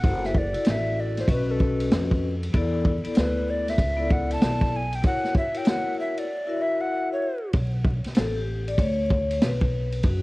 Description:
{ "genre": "hip hop, jazz-hop", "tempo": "96 BPM", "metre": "4/4", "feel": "swing 63% on 16ths", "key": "B minor", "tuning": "A4 = 440 Hz", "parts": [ { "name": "breathy mellow tenor recorder", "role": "melody", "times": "0.0-7.5 s", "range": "A4 to A5", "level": "-29 LUFS", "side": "equal", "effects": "cassette tape, analog delay" }, { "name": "vibraphone with hard mallets", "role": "accompaniment", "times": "0.0-10.2 s", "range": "B3 to E5", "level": "-28 LUFS", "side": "left 3 dB", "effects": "cassette tape" }, { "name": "upright bass", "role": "bass", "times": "0.0-10.2 s", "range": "F#1 to E#2", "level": "-28 LUFS", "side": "equal", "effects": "tube saturation" }, { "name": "vintage drum kit", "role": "drums", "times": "0.0-10.2 s", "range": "hi-hat, kick drum, ride cymbal, snare drum", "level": "-24 LUFS", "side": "equal", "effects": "cassette tape" } ], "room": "light reverb, small room ambience", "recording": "home recording on cassette, vinyl crackle", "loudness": "-22 LUFS", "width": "side -21 dB against mid", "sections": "0.0-7.5 A section; 7.5-10.2 A section", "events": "recorder solo 0.0-7.5; break 6.3-7.5; vibraphone solo 7.5-10.2", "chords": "0.0 F#m7b5; 1.3 B7; 2.5 E5; 5.0 F#7; 7.5 Bm7", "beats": "| 0.04 0.66 1.29 1.91 | 2.54 3.16 3.79 4.41 | 5.04 5.66 6.29 6.91 | 7.54 8.16 8.79 9.41 | 10.04" }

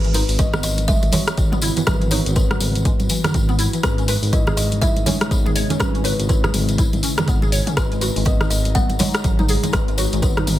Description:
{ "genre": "afro house", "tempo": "122 BPM", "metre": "4/4", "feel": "swing 60% on 16ths", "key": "unclear", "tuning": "A4 = 440 Hz", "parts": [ { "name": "kalimba", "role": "melody", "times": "0.0-10.6 s", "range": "B4 to F#5", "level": "-28 LUFS", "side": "left 1 dB", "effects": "dub echo" }, { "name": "ethereal airy pad", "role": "sustained chords", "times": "0.2-10.6 s", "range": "C#3 to A#5", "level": "-30 LUFS", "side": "left 1 dB", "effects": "ensemble chorus, built-in reverb, sidechain pumping" }, { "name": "mallet-like synth pluck", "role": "arpeggios", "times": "0.0-10.5 s", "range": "D#3 to C#5", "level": "-27 LUFS", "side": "right 1 dB", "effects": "ensemble chorus, sidechain pumping" }, { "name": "smooth synth bass", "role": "bass", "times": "0.0-10.6 s", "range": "G#1", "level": "-22 LUFS", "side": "equal", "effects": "sidechain pumping" }, { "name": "deep house drum kit", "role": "drums", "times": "0.0-10.6 s", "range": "hi-hat, rim click, toms", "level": "-24 LUFS", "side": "left 1 dB", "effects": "none" }, { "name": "tambourine", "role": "percussion", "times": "0.0-10.6 s", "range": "none", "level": "-30 LUFS", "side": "left 3 dB", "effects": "none" }, { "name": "congas", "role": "percussion", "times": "0.1-10.5 s", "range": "none", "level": "-25 LUFS", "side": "right 3 dB", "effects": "none" }, { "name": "electronic kick drum", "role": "drums", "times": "0.4-10.3 s", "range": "none", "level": "-21 LUFS", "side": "equal", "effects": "none" } ], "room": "digital ambience", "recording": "none", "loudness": "-16 LUFS", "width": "side -14 dB against mid", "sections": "0.0-10.6 A section", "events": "none", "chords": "0.0 E/G#; 3.8 C#m7/G#; 7.8 G#m", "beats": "0.39 0.88 1.38 | 1.87 2.36 2.85 3.34 | 3.83 4.33 4.82 5.31 | 5.80 6.29 6.79 7.28 | 7.77 8.26 8.75 9.24 | 9.74 10.23" }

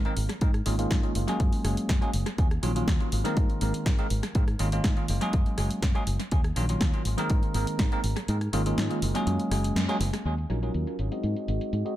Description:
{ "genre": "filtered disco house", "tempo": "122 BPM", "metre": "4/4", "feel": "straight", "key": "unclear", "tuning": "A4 = 442 Hz", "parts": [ { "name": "bell-like tine electric piano", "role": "accompaniment", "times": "0.0-11.9 s", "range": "Eb3 to Eb5", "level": "-30 LUFS", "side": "equal", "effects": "phaser, sidechain pumping, low-pass filter, analog delay" }, { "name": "fingered electric bass", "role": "bass", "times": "0.0-11.8 s", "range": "Gb1 to Ab2", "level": "-28 LUFS", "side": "equal", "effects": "sidechain pumping, low-pass filter" }, { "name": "punchy analog drum machine", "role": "drums", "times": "0.1-12.0 s", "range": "hi-hat, rim click, snare drum", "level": "-34 LUFS", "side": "equal", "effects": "sidechain pumping on hats, low-pass filter on hats, low-pass filter on snare, analog delay" }, { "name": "electronic kick drum", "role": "drums", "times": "0.4-7.9 s", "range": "none", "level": "-25 LUFS", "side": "equal", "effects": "none" } ], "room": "digital ambience", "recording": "echo-heavy mix", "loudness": "-24 LUFS", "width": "side -14 dB against mid", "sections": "0.0-10.3 A section; 10.3-12.0 B section", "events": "kick drops out 8.3-10.3; band accent 9.8; filter sweep on drum 10.3-12.0; filter sweep 10.3-12.0", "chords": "0.4 Db6/Ab; 1.2 Gb; 2.4 Ebm7; 3.1 Ab; 4.4 Db6/Ab; 5.1 Gb; 6.3 Ebm7; 7.1 Ab; 8.3 Db6/Ab; 9.0 Gb; 10.3 Ebm7; 11.0 Ab7", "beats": "| 0.42 0.91 1.40 1.89 | 2.38 2.88 3.37 3.86 | 4.35 4.84 5.33 5.83 | 6.32 6.81 7.30 7.79 | 8.29 8.78 9.27 9.76 | 10.25 10.74 11.24 11.73" }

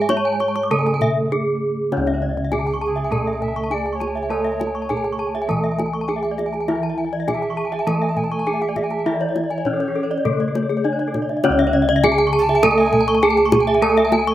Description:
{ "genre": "Balinese gamelan", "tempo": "101 BPM", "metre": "4/4", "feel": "straight", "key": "C# pelog", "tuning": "A4 = 440 Hz", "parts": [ { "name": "gamelan-type bronze metallophone", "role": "melody", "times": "0.0-14.3 s", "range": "A3 to C#5", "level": "-21 LUFS", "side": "right 1 dB", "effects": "none" }, { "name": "gamelan-type bronze metallophone", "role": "accompaniment", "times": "0.0-14.3 s", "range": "C#3 to A3", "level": "-27 LUFS", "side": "right 3 dB", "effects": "slapback echo" }, { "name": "gamelan-type bronze metallophone", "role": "arpeggios", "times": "0.0-14.3 s", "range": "G#4 to C#6", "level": "-24 LUFS", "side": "left 5 dB", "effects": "slapback echo" }, { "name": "gamelan-type bossed gongs", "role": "bass", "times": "0.0-14.3 s", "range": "C#2 to A4", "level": "-26 LUFS", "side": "equal", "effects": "none" }, { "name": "kendang", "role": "percussion", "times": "0.1-14.3 s", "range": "none", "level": "-26 LUFS", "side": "left 1 dB", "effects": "none" }, { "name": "gamelan-type bronze metallophone", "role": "arpeggios", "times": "0.3-14.3 s", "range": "G#4 to D6+35c", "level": "-28 LUFS", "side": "right 5 dB", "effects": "slapback echo" }, { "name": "alto recorder", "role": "second line", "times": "2.9-14.3 s", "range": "G#4 to A5", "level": "-28 LUFS", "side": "right 3 dB", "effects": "slapback echo" } ], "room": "little or no reverb", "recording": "recorded outdoors, with no room sound", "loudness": "-17 LUFS", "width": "side -13 dB against mid", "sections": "0.0-1.9 A section; 1.9-11.4 B section; 11.4-14.3 B section", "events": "none", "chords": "none", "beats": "0.10 0.71 1.32 | 1.92 2.51 3.11 3.70 | 4.30 4.89 5.49 6.08 | 6.68 7.28 7.87 8.46 | 9.06 9.66 10.25 10.85 | 11.44 12.04 12.63 13.23 | 13.82" }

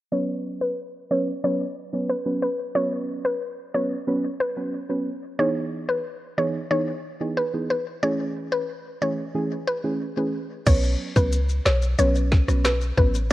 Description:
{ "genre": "dancehall", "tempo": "91 BPM", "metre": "4/4", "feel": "straight", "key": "unclear", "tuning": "A4 = 437 Hz", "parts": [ { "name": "mallet-like synth pluck", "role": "melody", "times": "0.1-13.3 s", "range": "B4 to C#5", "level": "-26 LUFS", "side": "left 1 dB", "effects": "chorus, low-pass filter, ping-pong delay" }, { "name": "deep mellow chord stab", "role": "accompaniment", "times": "0.1-13.3 s", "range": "E3 to B4", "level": "-27 LUFS", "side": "right 2 dB", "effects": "chorus, low-pass filter" }, { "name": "clean 808-style bass", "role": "bass", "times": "10.7-13.3 s", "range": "A1 to C#2", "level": "-22 LUFS", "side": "equal", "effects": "none" }, { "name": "island pop drum kit", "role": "drums", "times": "10.7-13.3 s", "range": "crash cymbal, hi-hat, kick drum, rim click, snare drum", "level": "-22 LUFS", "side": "equal", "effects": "none" }, { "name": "maracas", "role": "percussion", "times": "10.7-13.3 s", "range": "none", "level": "-40 LUFS", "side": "left 7 dB", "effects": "none" } ], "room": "light reverb, digital ambience", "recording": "worn, warbling old tape, cassette tape, warbly pitch drift", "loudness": "-22 LUFS", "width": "side -16 dB against mid", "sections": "0.1-10.7 A section; 10.7-13.3 B section", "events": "filter sweep 0.1-10.7", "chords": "0.1 Bsus2; 5.4 Emaj7; 8.0 Amaj7; 10.7 Bsus2", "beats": "| 0.12 0.78 1.44 2.10 | 2.76 3.42 4.08 4.73 | 5.39 6.05 6.71 7.37 | 8.03 8.69 9.35 10.01 | 10.67 11.33 11.99 12.65 | 13.30" }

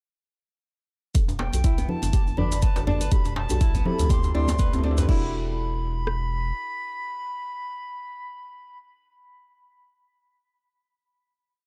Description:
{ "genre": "afro house", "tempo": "122 BPM", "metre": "4/4", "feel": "swing 57% on 16ths", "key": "E minor", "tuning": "A4 = 441 Hz", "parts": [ { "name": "deep mellow chord stab", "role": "stabs", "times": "1.1-8.8 s", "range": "C4 to B4", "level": "-35 LUFS", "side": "equal", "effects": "chorus, phaser, sidechain pumping, dub echo" }, { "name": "deep house drum kit", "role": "drums", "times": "1.1-5.2 s", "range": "crash cymbal, hi-hat, toms", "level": "-41 LUFS", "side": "equal", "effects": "high-pass filter on hats, high-pass filter on toms, high-pass filter on cymbals, high-pass filter on room" }, { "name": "cabasa", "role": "percussion", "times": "1.1-5.1 s", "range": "none", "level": "-43 LUFS", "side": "equal", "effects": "none" }, { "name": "congas", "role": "percussion", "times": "1.1-4.9 s", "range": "none", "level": "-35 LUFS", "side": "equal", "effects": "none" }, { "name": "round analog bass", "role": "bass", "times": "1.2-6.5 s", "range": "E1 to D2", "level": "-29 LUFS", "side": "equal", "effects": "sidechain pumping" }, { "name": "afro-pop drum kit", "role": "drums", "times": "1.2-6.2 s", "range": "kick drum, rim click", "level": "-24 LUFS", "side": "equal", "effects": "overdrive" }, { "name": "djembe", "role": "percussion", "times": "1.3-5.1 s", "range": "none", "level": "-33 LUFS", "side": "equal", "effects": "none" }, { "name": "reedy silver concert flute", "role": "melody", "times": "1.4-8.8 s", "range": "G5 to C6", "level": "-36 LUFS", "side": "equal", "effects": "dub echo" }, { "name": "flamenco guitar", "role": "arpeggios", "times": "1.6-5.3 s", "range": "B3 to B4", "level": "-36 LUFS", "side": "equal", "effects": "sidechain pumping, low-pass filter, dub echo" } ], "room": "light reverb, small room ambience", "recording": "dark, warm production", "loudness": "-25 LUFS", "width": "mono", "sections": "1.2-5.1 build; 5.1-9.0 final chord", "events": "build-up 1.2-5.1; drum fill 1.2-5.1; filter sweep on nylon-string guitar 1.2-5.1; filter sweep on synth stab 1.2-5.1", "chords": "1.2 Em11; 2.1 Gmaj9; 3.1 Em11; 4.1 D7sus4; 5.1 Em11", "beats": "| 1.15 1.64 2.14 2.63 | 3.12 3.61 4.10 4.59 | 5.09 5.58 6.07 6.56 | 7.05 7.54 8.04 8.53" }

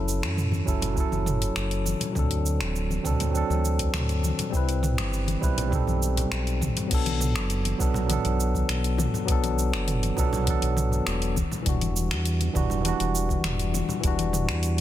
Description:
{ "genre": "sunset chillout", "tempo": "101 BPM", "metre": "4/4", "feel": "straight", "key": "unclear", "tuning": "A4 = 441 Hz", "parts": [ { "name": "tine electric piano", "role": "accompaniment", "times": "0.0-14.8 s", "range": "E3 to B4", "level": "-28 LUFS", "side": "moving between left 8 dB and right 7 dB", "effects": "auto-pan, ping-pong delay" }, { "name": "round analog bass", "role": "bass", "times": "0.0-14.8 s", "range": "D1 to F#2", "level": "-27 LUFS", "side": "equal", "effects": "none" }, { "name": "deep house drum kit", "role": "drums", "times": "0.1-14.8 s", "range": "cabasa, crash cymbal, finger snaps, hi-hat, toms", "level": "-30 LUFS", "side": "right 1 dB", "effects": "studio reverb, soft clipping on snare" }, { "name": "congas and bongos", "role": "percussion", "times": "0.2-14.8 s", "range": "none", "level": "-34 LUFS", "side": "left 2 dB", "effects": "none" }, { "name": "electronic kick drum", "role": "drums", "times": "0.7-14.2 s", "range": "none", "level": "-28 LUFS", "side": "equal", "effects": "studio reverb" } ], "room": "light reverb", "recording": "dense, heavily limited modern master", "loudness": "-23 LUFS", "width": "side -12 dB against mid", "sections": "0.0-6.9 A section; 6.9-14.8 B section", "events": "none", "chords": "0.0 F#m7; 2.2 D7; 4.5 Cmaj7; 5.7 B7b9b13; 6.9 Bm7; 11.4 Em9", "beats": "0.37 0.97 1.56 | 2.16 2.75 3.34 3.94 | 4.53 5.13 5.72 6.31 | 6.91 7.50 8.10 8.69 | 9.29 9.88 10.47 11.07 | 11.66 12.26 12.85 13.44 | 14.04 14.63" }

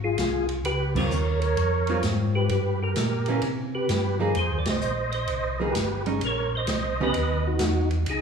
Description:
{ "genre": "soul jazz organ trio", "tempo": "130 BPM", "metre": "4/4", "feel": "swing 66% on 8ths", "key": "unclear", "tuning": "A4 = 439 Hz", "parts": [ { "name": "percussive tonewheel organ", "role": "melody", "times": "0.0-8.2 s", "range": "D#4 to Eb5", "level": "-27 LUFS", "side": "equal", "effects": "slow rotary speaker, chorus vibrato" }, { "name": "mellow tonewheel organ", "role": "bass", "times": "0.0-8.2 s", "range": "G1 to C3", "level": "-27 LUFS", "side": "equal", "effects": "slow rotary speaker" }, { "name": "swinging big-band drum kit", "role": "drums", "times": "0.2-8.2 s", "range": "crash cymbal, hi-hat, kick drum, ride cymbal, snare drum", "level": "-32 LUFS", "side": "right 1 dB", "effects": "none" }, { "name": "archtop guitar, miked and amplified", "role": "accompaniment", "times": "1.0-7.1 s", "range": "Eb3 to Ab4", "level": "-30 LUFS", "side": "right 2 dB", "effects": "none" } ], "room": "wet large studio reverb, RT60 1.4 s", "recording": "heard from further back in the room, small room ambience", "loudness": "-23 LUFS", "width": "side -6 dB against mid", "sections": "0.0-8.2 A section", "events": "band accent 0.9, 4.6", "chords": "0.0 Ab6; 0.7 Dbmaj9#11; 2.5 Gdim; 3.4 C5; 4.4 Fm11; 6.2 Bbmadd9; 7.1 Badd11/D#", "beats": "0.19 | 0.65 1.11 1.58 2.04 | 2.50 2.97 3.43 3.90 | 4.36 4.82 5.29 5.75 | 6.21 6.68 7.14 7.60 | 8.07" }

